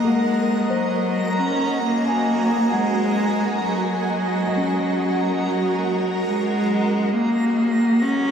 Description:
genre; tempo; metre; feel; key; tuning
ambient; 68 BPM; 4/4; straight; Gb lydian; A4 = 440 Hz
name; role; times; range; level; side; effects
rich cello; melody; 0.0-8.3 s; Gb3 to Db4; -21 LUFS; equal; tape echo
granular cloud pad; sustained chords; 0.0-8.3 s; Gb4 to Bb5; -25 LUFS; right 1 dB; built-in reverb
felt-muted upright piano; arpeggios; 0.0-8.3 s; Bb3 to Eb6; -27 LUFS; left 2 dB; tape echo
overtone-sweeping drone; drone; 0.0-7.2 s; none; barely audible; none; none
backwards swelling texture; texture; 0.0-8.3 s; Gb5 to Bb5; -30 LUFS; right 2 dB; built-in reverb
room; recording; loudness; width
wet shimmer reverb, RT60 8.9 s; dark, warm production; -18 LUFS; side -7 dB against mid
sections
0.0-7.1 A section; 7.1-8.3 B section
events
none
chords
0.0 Gb6; 3.6 Ebm; 7.1 Gb6

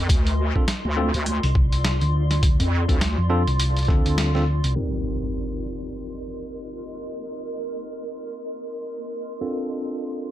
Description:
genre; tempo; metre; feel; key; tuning
glitch hop; 103 BPM; 4/4; swing 58% on 16ths; C dorian; A4 = 439 Hz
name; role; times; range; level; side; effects
wobble bass; bass; 0.0-3.2 s; D2 to F2; -22 LUFS; equal; chorus, overdrive
granular cloud pad; texture; 0.0-10.3 s; F4 to C6; -32 LUFS; equal; built-in reverb, sidechain pumping
boom bap sampler-style drum kit; drums; 0.1-4.9 s; crash cymbal, hi-hat, snare drum; -27 LUFS; equal; low-pass filter on hats, low-pass filter on snare, low-pass filter on cymbals, low-pass filter on room
electronic kick drum; drums; 0.1-4.0 s; none; -20 LUFS; equal; none
bright tine electric piano; stabs; 0.6-10.3 s; C4 to Bb4; -30 LUFS; equal; medium stereo tremolo, sidechain pumping, low-pass filter, dub echo
hollow-body short-scale fingered electric bass; bass; 1.4-4.7 s; C2 to F2; -21 LUFS; equal; none
impact; sound effects; 4.8-7.1 s; none; -31 LUFS; equal; none
room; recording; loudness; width
little or no reverb; low-pass filter; -21 LUFS; side -13 dB against mid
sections
0.0-4.8 A section; 4.8-10.3 B section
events
kick drops out 4.2-4.8; band accent 4.2; impact 4.8-7.1; filter sweep on tine electric piano 4.8-10.3; filter sweep 4.8-10.3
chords
0.1 Dm7; 4.8 Cm7; 9.4 Dm7

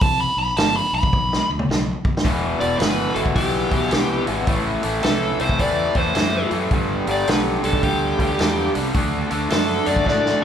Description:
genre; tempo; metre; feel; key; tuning
blues rock power trio and southern rock; 108 BPM; 4/4; swing 64% on 8ths; E minor; A4 = 439 Hz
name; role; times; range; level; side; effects
dark smooth lead guitar; melody; 0.0-10.4 s; G4 to B5; -22 LUFS; equal; overdrive
fuzz fingered electric bass; bass; 0.0-10.3 s; E1 to A2; -27 LUFS; equal; overdrive
vintage drum kit; drums; 0.0-10.4 s; hi-hat, kick drum, snare drum, toms; -22 LUFS; equal; none
overdriven semi-hollow guitar; riff; 2.2-10.4 s; E2 to D4; -22 LUFS; equal; none
room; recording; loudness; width
moderate large studio reverb, RT60 1.4 s; band playing live in one room; -18 LUFS; side -8 dB against mid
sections
0.0-2.3 A section; 2.3-10.4 B section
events
lead electric guitar solo 0.0-2.3; drum fill 1.1-2.3, 10.1-10.4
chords
0.0 Em (rootless); 2.3 Em; 4.5 Am; 6.7 G; 8.9 D

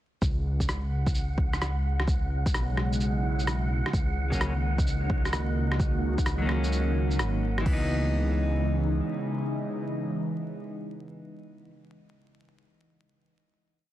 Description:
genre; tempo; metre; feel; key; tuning
future garage; 129 BPM; 4/4; swing 65% on 16ths; C# dorian; A4 = 436 Hz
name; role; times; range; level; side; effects
dark detuned saw bass; bass; 0.2-9.0 s; G#1 to C#2; -28 LUFS; equal; tube saturation
electronic shaker and rim click; drums; 0.2-7.6 s; none; -33 LUFS; equal; overdrive
organic electronic drum kit; drums; 0.2-7.8 s; crash cymbal, kick drum; -28 LUFS; equal; overdrive
wind-like tuned noise texture; texture; 0.6-7.7 s; F#5; -40 LUFS; right 3 dB; built-in reverb
airy breathy pad; sustained chords; 2.7-12.0 s; C#3 to F#4; -32 LUFS; right 1 dB; chorus, phaser, sidechain pumping
clean electric guitar; accompaniment; 4.3-11.8 s; E3 to D#4; -34 LUFS; left 1 dB; vintage 12-bit sampler grit, sidechain pumping, tape echo
room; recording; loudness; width
light reverb, digital ambience; dense, heavily limited modern master, vinyl crackle; -25 LUFS; side -14 dB against mid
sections
0.2-7.7 groove; 7.7-11.4 final chord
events
none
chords
0.2 C#m7; 3.9 D#m7/C#; 7.7 C#m9

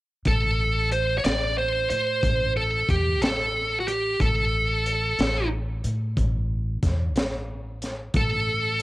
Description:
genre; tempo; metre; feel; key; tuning
slow blues; 61 BPM (dotted quarters); 12/8; straight; A minor; A4 = 440 Hz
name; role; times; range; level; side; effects
smooth overdriven lead guitar; melody; 0.3-8.8 s; F#4 to D5; -24 LUFS; right 1 dB; none
upright bass; bass; 0.3-8.8 s; A1 to A2; -27 LUFS; equal; none
crunchy breakbeat drum kit; drums; 0.3-8.8 s; hi-hat, kick drum, snare drum; -27 LUFS; equal; none
room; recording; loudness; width
little or no reverb; home recording on cassette; -22 LUFS; side -18 dB against mid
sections
0.3-8.8 A section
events
none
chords
none

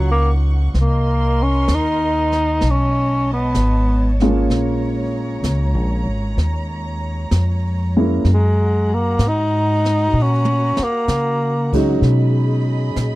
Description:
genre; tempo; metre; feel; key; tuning
jazz ballad; 64 BPM; 4/4; swing 69% on 8ths; unclear; A4 = 443 Hz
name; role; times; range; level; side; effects
breathy tenor saxophone; melody; 0.0-11.7 s; Gb3 to Eb4; -19 LUFS; equal; none
warm upright piano; accompaniment; 0.0-13.2 s; Gb3 to F4; -20 LUFS; right 1 dB; none
warm studio string section; sustained chords; 0.0-13.2 s; G#3 to Db6; -30 LUFS; right 1 dB; none
upright bass; bass; 0.0-13.2 s; G#1 to Db3; -18 LUFS; equal; none
jazz brush drum kit; drums; 0.7-13.2 s; brushed snare drum, crash cymbal, hi-hat, kick drum, snare drum, toms; -25 LUFS; right 1 dB; none
room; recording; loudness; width
small room ambience; dry, close 1970s-style studio recording; -15 LUFS; side -18 dB against mid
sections
0.0-13.2 A section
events
tenor saxophone solo 0.0-13.2; drum fill 10.1-11.1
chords
0.0 Ebm9; 0.7 Cm7; 2.6 B13; 4.5 Bbm7; 8.2 Gb; 12.0 B6

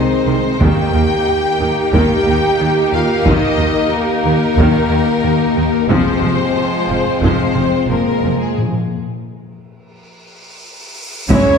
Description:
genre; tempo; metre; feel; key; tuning
cinematic, epic orchestral film score; 90 BPM; 4/4; straight; unclear; A4 = 441 Hz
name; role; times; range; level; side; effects
clear symphonic violin section; melody; 0.0-11.6 s; Ab4 to G5; -21 LUFS; left 4 dB; none
rich symphonic violin section; second line; 0.0-11.6 s; Ab3 to E5; -24 LUFS; left 2 dB; none
rich chamber viola section; accompaniment; 0.0-11.6 s; Eb3 to G4; -22 LUFS; right 1 dB; none
clear trombone section; sustained chords; 0.0-11.6 s; Eb3 to Bb3; -23 LUFS; right 2 dB; none
warm French horn section; sustained chords; 0.0-11.6 s; Ab3 to G4; -19 LUFS; left 3 dB; none
clear symphonic cello section; bass; 0.0-11.4 s; C#2 to C3; -22 LUFS; right 2 dB; none
clear symphonic double bass section; bass; 0.3-11.4 s; F1 to Eb2; -20 LUFS; right 2 dB; none
taiko ensemble; drums; 0.6-11.6 s; none; -20 LUFS; left 1 dB; none
timpani; percussion; 8.6-9.6 s; Bb2; -21 LUFS; left 1 dB; none
cymbal swell and sub drop; sound effects; 10.3-11.6 s; none; -26 LUFS; equal; none
mellow hollow silver concert flute; second line; 11.3-11.6 s; C#5; -17 LUFS; left 1 dB; none
dark trumpet section; stabs; 11.3-11.6 s; C#5; -16 LUFS; right 5 dB; none
room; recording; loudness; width
wet concert hall reverb, RT60 2.0 s; heard from further back in the room; -12 LUFS; side -6 dB against mid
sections
0.0-11.3 A section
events
break 8.6-11.3; cymbal swell 10.3-11.3; drum fill 10.3-11.3; impact 11.3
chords
0.0 Ab; 0.6 Eb; 5.9 Fm; 8.6 N.C.

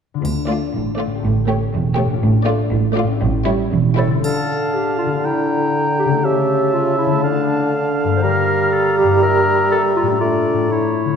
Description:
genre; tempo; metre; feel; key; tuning
cinematic, playful, whimsical film cue; 121 BPM; 2/4; straight; D minor; A4 = 438 Hz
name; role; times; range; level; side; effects
concert harp; arpeggios; 0.1-11.2 s; G2 to D5; -22 LUFS; left 8 dB; none
rich studio cello section; bass; 0.2-4.1 s; D2 to A2; -21 LUFS; right 4 dB; none
rich studio double bass section; bass; 0.2-4.1 s; E1 to D2; -21 LUFS; right 5 dB; none
triangle; percussion; 0.2-1.2, 4.2-5.2 s; none; -35 LUFS; right 4 dB; none
rich studio violin section; melody; 0.5-4.2 s; C#5 to D5; -29 LUFS; left 4 dB; none
rich studio violin section; second line; 0.5-4.2 s; E4 to G4; -27 LUFS; left 1 dB; none
rich studio viola section; accompaniment; 0.5-4.2 s; G3 to A3; -25 LUFS; right 2 dB; none
mellow clarinet; second line; 4.0-11.2 s; D4 to C5; -21 LUFS; equal; none
clear oboe; second line; 4.2-11.2 s; C#5 to G5; -25 LUFS; right 2 dB; none
silver concert flute; second line; 4.2-10.9 s; A5 to Bb5; -24 LUFS; left 2 dB; none
warm bassoon; accompaniment; 4.3-10.9 s; C#3 to A3; -19 LUFS; right 3 dB; none
room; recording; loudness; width
wet scoring stage reverb, RT60 1.9 s; dark, warm production; -15 LUFS; side -7 dB against mid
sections
0.2-4.2 A section; 4.2-11.2 B section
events
none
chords
0.2 Dm; 1.2 A7; 2.2 Dm/A; 3.2 A7; 4.2 Dm; 5.2 Em7b5/D; 6.2 A7/C#; 7.2 Dm; 8.2 Gm7; 9.2 Edim/G; 10.2 Dm/A

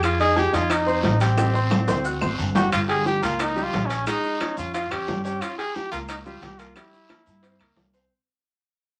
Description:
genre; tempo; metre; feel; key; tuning
Afro-Cuban jazz; 178 BPM; 4/4; straight; unclear; A4 = 435 Hz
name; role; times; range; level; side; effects
clear trumpet; melody; 0.0-7.7 s; C4 to Ab4; -28 LUFS; equal; none
bright upright piano; accompaniment; 0.0-8.1 s; G3 to Ab6; -30 LUFS; equal; none
upright bass; bass; 0.0-8.1 s; G1 to G2; -29 LUFS; equal; none
bongos; percussion; 0.0-7.9 s; none; -34 LUFS; equal; none
claves; percussion; 0.0-7.8 s; none; -39 LUFS; equal; none
guiro; percussion; 0.0-8.1 s; none; -40 LUFS; equal; none
maracas; percussion; 0.0-8.1 s; none; -48 LUFS; equal; none
timbales; percussion; 0.0-7.9 s; none; -30 LUFS; equal; none
room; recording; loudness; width
wet studio reverb, RT60 0.5 s; vinyl crackle; -23 LUFS; mono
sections
0.0-2.7 A section; 2.7-8.1 B section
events
drum fill 1.4-2.7; fade-out 2.7-8.1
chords
0.0 Fm7; 1.4 Am7; 2.1 D7; 2.7 Gdim; 4.1 Eb9; 5.4 C7

